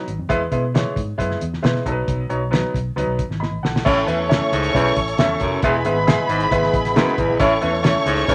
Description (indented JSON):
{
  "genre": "uptempo 1960s-style soul",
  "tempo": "135 BPM",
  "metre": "4/4",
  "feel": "straight",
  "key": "E major",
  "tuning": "A4 = 444 Hz",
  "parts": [
    { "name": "clear baby grand piano", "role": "accompaniment", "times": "0.0-8.3 s", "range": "F#3 to B5", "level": "-24 LUFS", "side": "equal", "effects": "none" },
    { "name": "vintage muted fingered electric bass", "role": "bass", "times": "0.1-8.3 s", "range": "E1 to B2", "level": "-28 LUFS", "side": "equal", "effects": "none" },
    { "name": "cloth-damped thuddy drum kit", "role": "drums", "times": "0.1-8.3 s", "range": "crash cymbal, hi-hat, kick drum, snare drum", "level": "-24 LUFS", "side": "equal", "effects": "none" },
    { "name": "warm studio string section", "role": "second line", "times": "3.9-8.3 s", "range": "B4 to C#6", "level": "-26 LUFS", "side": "equal", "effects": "none" },
    { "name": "tonewheel organ", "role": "sustained chords", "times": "3.9-8.3 s", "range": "G#3 to A4", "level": "-29 LUFS", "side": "equal", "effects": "fast rotary speaker, overdrive" },
    { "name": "clear baritone saxophone", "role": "riff", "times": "3.9-8.3 s", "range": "E2 to A2", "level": "-25 LUFS", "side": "equal", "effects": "none" }
  ],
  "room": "wet small room reverb, RT60 0.5 s",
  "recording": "none",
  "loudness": "-19 LUFS",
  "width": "mono",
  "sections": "0.0-3.9 A section; 3.9-8.3 B section",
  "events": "drum fill 3.4-3.9",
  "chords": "0.3 E; 1.9 B; 3.9 A; 5.6 E; 7.4 A"
}